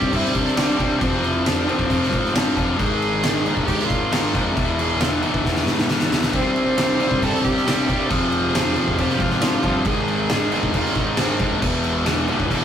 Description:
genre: quiet-loud alternative rock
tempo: 136 BPM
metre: 4/4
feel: straight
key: unclear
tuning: A4 = 440 Hz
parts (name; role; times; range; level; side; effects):
- clear cello; melody; 0.0-12.6 s; G#3 to C5; -27 LUFS; right 2 dB; none
- phased string machine; sustained chords; 0.0-12.6 s; G4 to C6; -37 LUFS; equal; none
- distorted electric guitar; riff; 0.0-12.6 s; E2 to C4; -22 LUFS; left 2 dB; overdrive
- fuzz fingered electric bass; bass; 0.0-12.6 s; C2 to C3; -29 LUFS; right 1 dB; overdrive
- oversized low-tuned drum kit; drums; 0.0-12.6 s; crash cymbal, kick drum, snare drum; -22 LUFS; right 1 dB; none
- fuzz guitar; riff; 6.3-12.6 s; E2 to C4; -29 LUFS; right 5 dB; distortion
room: moderate booth ambience, RT60 0.2 s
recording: rough rehearsal-room recording, warm saturation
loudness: -18 LUFS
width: side -9 dB against mid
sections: 0.0-12.6 A section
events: drum fill 5.5-6.3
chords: 0.0 C; 1.0 Fm; 2.8 Ab; 4.6 E; 6.3 C; 8.1 Fm; 9.9 Ab; 11.6 E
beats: 0.14 0.59 | 1.03 1.47 1.91 2.36 | 2.80 3.24 3.68 4.12 | 4.57 5.01 5.45 5.89 | 6.33 6.78 7.22 7.66 | 8.10 8.54 8.98 9.43 | 9.87 10.31 10.75 11.19 | 11.63 12.08 12.52

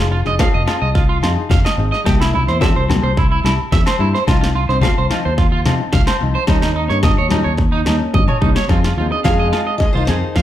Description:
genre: highlife guitar band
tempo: 108 BPM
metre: 4/4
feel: straight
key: F minor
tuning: A4 = 440 Hz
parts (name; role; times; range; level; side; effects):
- nylon-string guitar; accompaniment; 0.0-10.3 s; F3 to Ab4; -24 LUFS; left 3 dB; none
- electric guitar at the edge of break-up; arpeggios; 0.0-10.4 s; Eb4 to F5; -20 LUFS; right 4 dB; spring reverb
- fingered electric bass; bass; 0.0-10.4 s; F1 to F3; -19 LUFS; equal; none
- big-room dance drum kit; drums; 0.3-10.4 s; kick drum, snare drum, toms; -17 LUFS; equal; none
- agogo bells; percussion; 0.4-10.2 s; none; -28 LUFS; left 8 dB; none
- congas; percussion; 0.4-10.4 s; none; -22 LUFS; left 2 dB; none
- picked steel-string acoustic guitar; melody; 9.2-10.4 s; Eb4 to F5; -21 LUFS; left 1 dB; none
- growling trombone; second line; 9.3-10.4 s; Eb3 to Ab3; -26 LUFS; right 2 dB; none
room: moderate large studio reverb, RT60 0.9 s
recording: band playing live in one room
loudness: -13 LUFS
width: side -12 dB against mid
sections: 0.0-8.7 A section; 8.7-10.4 B section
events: drum fill 8.1-8.7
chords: 0.0 Fm7; 2.1 C7; 4.3 Cmadd11; 6.5 Eb7; 8.7 Fm7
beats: 0.39 0.95 1.50 | 2.06 2.61 3.17 3.72 | 4.28 4.83 5.38 5.94 | 6.49 7.04 7.59 8.15 | 8.70 9.26 9.81 10.36

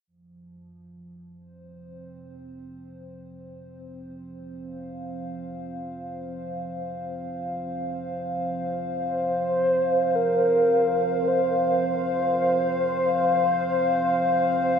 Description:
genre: ambient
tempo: free time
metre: none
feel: none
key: unclear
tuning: A4 = 440 Hz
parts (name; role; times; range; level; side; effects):
- dark analog pad; sustained chords; 0.1-14.8 s; F3 to F5; -27 LUFS; left 1 dB; wide subtle chorus
- mellow horn-like synth lead; melody; 9.0-14.8 s; Bb4 to C5; -23 LUFS; right 1 dB; chorus, diffuse ambient delay
room: wet huge ambient reverb, RT60 8.6 s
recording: none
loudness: -22 LUFS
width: side -7 dB against mid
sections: 0.1-14.8 A section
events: none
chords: 0.1 F5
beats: free time

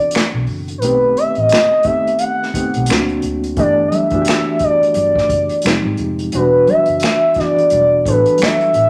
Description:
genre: R&B, neo-soul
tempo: 87 BPM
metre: 4/4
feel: swing 60% on 16ths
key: G major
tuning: A4 = 441 Hz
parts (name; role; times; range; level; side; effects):
- gliding portamento lead; melody; 0.0-8.9 s; Bb4 to F#5; -16 LUFS; equal; chorus
- reed electric piano; accompaniment; 0.0-8.9 s; D#3 to A4; -22 LUFS; equal; fast tremolo
- unplugged drum kit; drums; 0.1-8.9 s; finger snaps, hi-hat, kick drum, snare drum; -22 LUFS; equal; none
- vintage muted fingered electric bass; bass; 0.3-8.9 s; E1 to D2; -25 LUFS; equal; none
- congas; percussion; 3.6-8.9 s; none; -30 LUFS; equal; none
room: moderate large studio reverb, RT60 0.9 s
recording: none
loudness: -15 LUFS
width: mono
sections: 0.0-8.9 A section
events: none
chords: 0.0 D13; 0.8 B7b9b13; 2.9 Daug7; 3.6 G69; 5.6 Fm9; 6.3 Em9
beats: 0.13 | 0.82 1.50 2.19 2.88 | 3.57 4.26 4.95 5.64 | 6.33 7.02 7.71 8.40

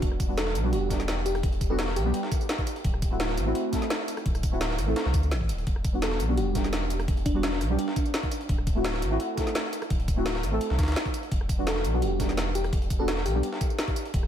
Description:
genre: liquid drum and bass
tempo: 170 BPM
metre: 4/4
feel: straight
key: E minor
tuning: A4 = 439 Hz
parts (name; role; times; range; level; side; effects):
- deep mellow chord stab; accompaniment; 0.0-13.5 s; G3 to A4; -31 LUFS; right 1 dB; chorus, vintage 12-bit sampler grit, ping-pong delay
- warm sub bass; bass; 0.0-14.3 s; D1 to D2; -29 LUFS; equal; none
- breakbeat sampler-style drum kit; drums; 0.0-14.2 s; hi-hat, snare drum; -34 LUFS; equal; high-pass filter on hats, high-pass filter on snare, high-pass filter on room
- drum and bass drum kit; drums; 0.0-14.3 s; hi-hat, rim click, snare drum, tambourine; -34 LUFS; equal; overdrive
- electronic kick drum; drums; 0.0-14.2 s; none; -27 LUFS; equal; overdrive
- bell-like FM electric piano; melody; 0.4-2.5, 6.0-8.3, 11.7-13.8 s; D4 to A4; -33 LUFS; left 1 dB; chorus, cassette tape, tape echo
room: light reverb, digital ambience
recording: none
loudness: -24 LUFS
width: side -10 dB against mid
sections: 0.0-14.3 A section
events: none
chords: 0.0 Em7; 2.7 D9; 5.7 Em7; 8.3 D9; 11.3 Em7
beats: | 0.02 0.37 0.73 1.08 | 1.43 1.79 2.14 2.49 | 2.85 3.20 3.55 3.90 | 4.26 4.61 4.96 5.32 | 5.67 6.02 6.37 6.73 | 7.08 7.43 7.79 8.14 | 8.49 8.85 9.20 9.55 | 9.90 10.26 10.61 10.96 | 11.32 11.67 12.02 12.37 | 12.73 13.08 13.43 13.79 | 14.14

